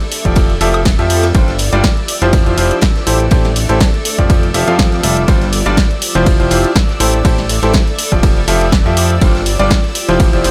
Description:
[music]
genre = piano house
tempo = 122 BPM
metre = 4/4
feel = swing 55% on 16ths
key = unclear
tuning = A4 = 440 Hz
[part]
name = analog string pad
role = sustained chords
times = 0.0-10.5 s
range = D5 to E6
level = -28 LUFS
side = equal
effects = ensemble chorus, phaser, sidechain pumping
[part]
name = punchy analog drum machine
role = drums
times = 0.0-10.5 s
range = hi-hat, ride cymbal, snare drum, woodblock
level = -22 LUFS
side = equal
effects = none
[part]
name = granular cloud pad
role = texture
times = 0.0-10.5 s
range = D4 to B5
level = -28 LUFS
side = equal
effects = none
[part]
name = raw garage drum kit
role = drums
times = 0.1-10.5 s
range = ride cymbal, snare drum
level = -31 LUFS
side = equal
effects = none
[part]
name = clear baby grand piano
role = riff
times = 0.2-10.5 s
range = F3 to F5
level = -18 LUFS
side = equal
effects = sidechain pumping, digital delay
[part]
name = fat analog bass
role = bass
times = 0.3-10.5 s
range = F1 to F2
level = -19 LUFS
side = equal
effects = sidechain pumping
[part]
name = electronic kick drum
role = drums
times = 0.3-10.3 s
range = none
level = -15 LUFS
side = equal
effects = none
[sound]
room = small room ambience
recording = none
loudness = -12 LUFS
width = mono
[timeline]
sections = 0.0-10.5 A section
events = none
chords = 0.0 Fmaj9; 1.3 G7sus4; 2.1 Dm11/F; 3.1 Fmaj9; 5.3 G7sus4; 6.0 Dm11/F; 7.0 Fmaj9; 9.2 G7sus4; 10.0 Dm11/F

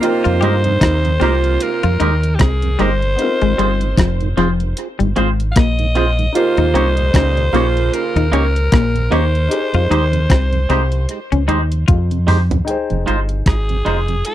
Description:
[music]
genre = lovers rock reggae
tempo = 76 BPM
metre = 4/4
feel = swing 58% on 16ths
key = F minor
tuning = A4 = 441 Hz
[part]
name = raspy alto saxophone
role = melody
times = 0.0-14.3 s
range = G4 to F5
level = -22 LUFS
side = equal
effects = tape echo
[part]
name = bright saxophone section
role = second line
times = 0.0-8.3 s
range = Bb2 to F4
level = -20 LUFS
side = right 7 dB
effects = none
[part]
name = warm concert grand piano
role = accompaniment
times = 0.0-14.3 s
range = Bb3 to G5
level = -25 LUFS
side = left 5 dB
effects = none
[part]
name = clean 12-bit digital drum machine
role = drums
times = 0.0-14.3 s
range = hi-hat, kick drum, rim click, toms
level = -17 LUFS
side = equal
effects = tape echo
[part]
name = mellow tonewheel organ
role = accompaniment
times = 0.2-14.2 s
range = Eb2 to Ab4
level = -26 LUFS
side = right 8 dB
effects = overdrive, chorus vibrato, slow rotary speaker, tape echo
[part]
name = semi-hollow electric guitar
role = riff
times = 0.2-12.1 s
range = F3 to G4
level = -21 LUFS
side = left 9 dB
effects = none
[part]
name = deep dub fingered electric bass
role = bass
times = 0.3-14.2 s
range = F1 to G2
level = -17 LUFS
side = equal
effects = none
[part]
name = twangy electric guitar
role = stabs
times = 0.4-14.0 s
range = Ab3 to Db5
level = -19 LUFS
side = right 2 dB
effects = none
[sound]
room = little or no reverb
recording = dry, close 1970s-style studio recording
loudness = -13 LUFS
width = side -12 dB against mid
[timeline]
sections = 0.0-12.7 A section; 12.7-14.3 B section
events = drum fill 11.9-12.7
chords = 0.0 Fm11; 3.2 Ab6; 6.3 Eb7; 9.5 Fm9; 12.7 Fm7

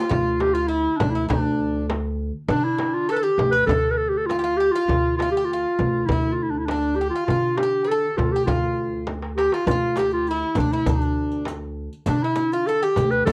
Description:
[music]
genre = Turkish makam ensemble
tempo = 100 BPM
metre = 4/4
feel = straight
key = D makam huseyni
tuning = A4 = 440 Hz
[part]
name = mellow clarinet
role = melody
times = 0.0-13.3 s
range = D4 to B4-28c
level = -24 LUFS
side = equal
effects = plate reverb
[part]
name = Greek bouzouki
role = second line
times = 0.0-13.3 s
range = D4 to B4-30c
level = -33 LUFS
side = equal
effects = none
[part]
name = upright bass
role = bass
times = 0.1-13.3 s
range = D2 to D3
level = -30 LUFS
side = equal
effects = none
[part]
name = darbuka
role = percussion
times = 0.1-13.3 s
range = none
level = -31 LUFS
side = equal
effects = none
[part]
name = frame drum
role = percussion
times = 0.1-13.3 s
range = none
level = -30 LUFS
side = equal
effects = none
[part]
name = riq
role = percussion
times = 9.7-13.3 s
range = none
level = -37 LUFS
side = equal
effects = none
[sound]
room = moderate studio reverb, RT60 0.5 s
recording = worn, warbling old tape, cassette tape, warbly pitch drift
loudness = -22 LUFS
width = mono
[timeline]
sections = 0.1-13.3 A section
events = drum fill 9.1-9.7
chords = none

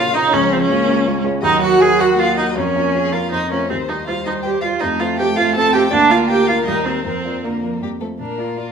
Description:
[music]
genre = quick classical-period movement for piano quintet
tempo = 161 BPM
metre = 3/4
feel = straight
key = Bb minor, Bb major from 3.7 s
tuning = A4 = 440 Hz
[part]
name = dark violin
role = melody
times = 0.0-8.7 s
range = C4 to Gb5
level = -26 LUFS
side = left 8 dB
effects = none
[part]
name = dark cello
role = second line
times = 0.0-8.7 s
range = Db3 to C4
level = -24 LUFS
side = right 6 dB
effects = none
[part]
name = warm violin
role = second line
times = 0.0-8.7 s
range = F4 to A5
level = -23 LUFS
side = left 3 dB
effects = none
[part]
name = clear viola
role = accompaniment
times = 0.0-8.7 s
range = Bb3 to A4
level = -17 LUFS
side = right 3 dB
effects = none
[part]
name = dark baby grand piano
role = accompaniment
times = 0.0-8.7 s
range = Db2 to D5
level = -23 LUFS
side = left 2 dB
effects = none
[sound]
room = moderate large studio reverb, RT60 1.4 s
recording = none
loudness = -14 LUFS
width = side -6 dB against mid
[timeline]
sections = 0.0-8.2 A section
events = none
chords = 0.3 Db; 1.4 Ebm; 2.6 Bbm/F; 3.3 F; 3.7 Cm/Eb; 4.8 F; 5.9 Bb/D; 6.7 Cm7/Eb; 7.0 Bb/F; 7.8 F; 8.2 Bb

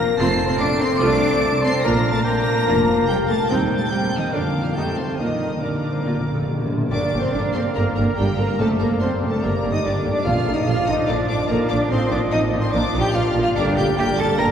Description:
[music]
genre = quick classical-period movement for symphony orchestra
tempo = 144 BPM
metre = 4/4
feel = straight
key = Bb major, G minor from 6.9 s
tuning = A4 = 440 Hz
[part]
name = clear studio violin section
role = melody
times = 0.0-14.5 s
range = G5 to D7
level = -31 LUFS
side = left 2 dB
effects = none
[part]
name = mellow flute section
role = second line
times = 0.0-14.5 s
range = G4 to D6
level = -28 LUFS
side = equal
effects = none
[part]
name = rich studio violin section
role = second line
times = 0.0-14.5 s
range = D4 to D6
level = -33 LUFS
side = left 2 dB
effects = none
[part]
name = warm cor anglais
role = second line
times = 0.0-14.5 s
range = Bb4 to A5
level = -30 LUFS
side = right 2 dB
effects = none
[part]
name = warm French horn section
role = sustained chords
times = 0.0-14.5 s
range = G3 to D5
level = -26 LUFS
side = left 3 dB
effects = none
[part]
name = clear studio cello section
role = bass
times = 0.0-14.5 s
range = C3 to Bb4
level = -25 LUFS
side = right 1 dB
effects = none
[part]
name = mellow clarinet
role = second line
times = 0.2-14.5 s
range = C4 to Bb5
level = -29 LUFS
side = equal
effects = none
[part]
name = mellow bassoon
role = accompaniment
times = 0.2-14.5 s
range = F3 to C4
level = -28 LUFS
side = equal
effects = none
[part]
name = rich studio viola section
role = accompaniment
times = 0.2-14.5 s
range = D3 to F4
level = -28 LUFS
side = right 1 dB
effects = none
[part]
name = rich studio double bass section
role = bass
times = 0.2-14.5 s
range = F1 to F2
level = -25 LUFS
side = right 1 dB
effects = none
[part]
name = timpani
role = percussion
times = 5.2-6.9, 10.3-10.8 s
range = Bb2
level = -29 LUFS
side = equal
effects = none
[sound]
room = wet cathedral reverb, RT60 6.0 s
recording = heard from further back in the room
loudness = -18 LUFS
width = side -8 dB against mid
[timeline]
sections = 0.0-6.9 A section; 6.9-14.5 B section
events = timpani fill 5.2-6.9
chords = 0.2 F; 1.8 Bb; 3.5 Cm/Eb; 4.3 Bb/F; 4.8 F9; 5.2 Bb; 6.9 Gm; 8.6 D7/F#; 9.4 Gm; 10.3 Bb; 11.9 F7/A; 12.7 Bb; 13.6 Gm

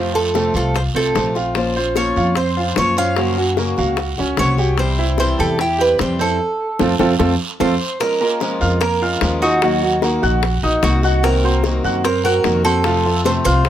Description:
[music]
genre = latin, Cuban son and guajira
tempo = 149 BPM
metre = 4/4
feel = straight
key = Bb minor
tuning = A4 = 441 Hz
[part]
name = Cuban tres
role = melody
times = 0.0-13.7 s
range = Gb4 to F5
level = -20 LUFS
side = right 2 dB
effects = none
[part]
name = picked acoustic archtop guitar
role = accompaniment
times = 0.0-13.7 s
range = C3 to C5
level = -22 LUFS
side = left 3 dB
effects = none
[part]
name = clear concert grand piano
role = arpeggios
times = 0.0-13.7 s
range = F3 to Gb6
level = -21 LUFS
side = right 4 dB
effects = none
[part]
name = upright bass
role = bass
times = 0.0-13.7 s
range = Bb1 to Gb2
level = -20 LUFS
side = equal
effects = none
[part]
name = guiro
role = percussion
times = 0.3-13.7 s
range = none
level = -30 LUFS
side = right 6 dB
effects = none
[part]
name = bongos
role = percussion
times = 0.4-13.7 s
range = none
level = -23 LUFS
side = left 8 dB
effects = none
[sound]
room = little or no reverb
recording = close, detailed microphones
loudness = -15 LUFS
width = side -11 dB against mid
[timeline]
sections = 0.0-8.0 A section; 8.0-13.7 A section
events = band accent 6.4-8.0; drum fill 7.8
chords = 0.0 F; 1.6 Bbmadd9; 3.2 Gbmaj7; 4.8 C; 6.4 F; 8.0 Bbm7; 9.6 Ebm; 11.2 Cm7b5; 12.8 F

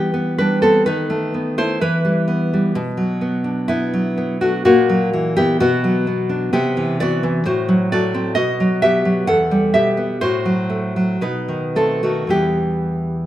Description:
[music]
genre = romantic piece for solo classical guitar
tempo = 51-66 BPM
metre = 2/4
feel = rubato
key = E minor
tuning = A4 = 442 Hz
[part]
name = nylon-string guitar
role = solo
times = 0.0-13.3 s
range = E2 to F#5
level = -16 LUFS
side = equal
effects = none
[sound]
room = wet recital hall reverb, RT60 1.7 s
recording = minimal, uncompressed stereo recording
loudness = -16 LUFS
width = side -13 dB against mid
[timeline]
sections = 0.0-13.3 A section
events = none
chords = 0.0 Em; 0.9 B7/D#; 1.8 Em; 2.7 Bm; 4.7 F#7/A#; 5.6 Bm; 6.5 Cmaj7; 7.4 F#dim/A; 8.4 B; 9.3 Em; 10.2 F#dim/A; 11.2 B7; 12.3 Em

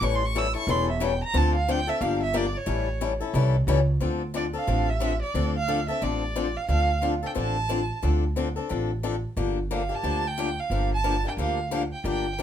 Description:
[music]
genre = acoustic string swing (jazz manouche)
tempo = 179 BPM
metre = 4/4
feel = swing 60% on 8ths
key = D minor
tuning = A4 = 439 Hz
[part]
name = rich violin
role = melody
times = 0.0-12.4 s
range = C#5 to E6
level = -28 LUFS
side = right 4 dB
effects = none
[part]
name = picked swing-style acoustic guitar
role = accompaniment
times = 0.0-12.4 s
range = D3 to A4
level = -28 LUFS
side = left 6 dB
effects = none
[part]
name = upright bass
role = bass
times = 0.0-12.4 s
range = E1 to D2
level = -27 LUFS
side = right 1 dB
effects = none
[sound]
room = moderate studio ambience, RT60 0.5 s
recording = minimal, uncompressed stereo recording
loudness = -23 LUFS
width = side -10 dB against mid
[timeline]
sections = 0.0-4.0 A section; 4.0-12.4 B section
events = violin solo 0.0-4.0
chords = 0.0 A7; 1.3 Dm7; 2.0 Gm7; 2.7 A7#9; 4.0 Dm7; 9.4 Gm7

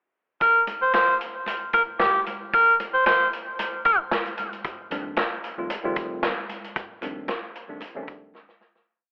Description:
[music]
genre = funk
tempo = 114 BPM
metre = 4/4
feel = straight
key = unclear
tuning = A4 = 437 Hz
[part]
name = clear tenor saxophone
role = second line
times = 0.4-4.0 s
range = G4 to C5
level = -23 LUFS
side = equal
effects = analog delay
[part]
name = vintage drum kit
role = drums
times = 0.4-8.9 s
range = hi-hat, kick drum, snare drum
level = -31 LUFS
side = equal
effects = none
[part]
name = congas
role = percussion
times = 0.4-8.7 s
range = none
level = -43 LUFS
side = equal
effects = none
[part]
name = tine electric piano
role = stabs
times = 4.9-8.5 s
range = F2 to F4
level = -34 LUFS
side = equal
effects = none
[sound]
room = moderate plate reverb, RT60 2.8 s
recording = telephone sound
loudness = -24 LUFS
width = mono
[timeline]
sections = 0.4-8.9 breakdown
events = fade-out 6.8-8.9; drum fill 8.3-8.9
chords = 0.4 N.C.; 4.7 F13

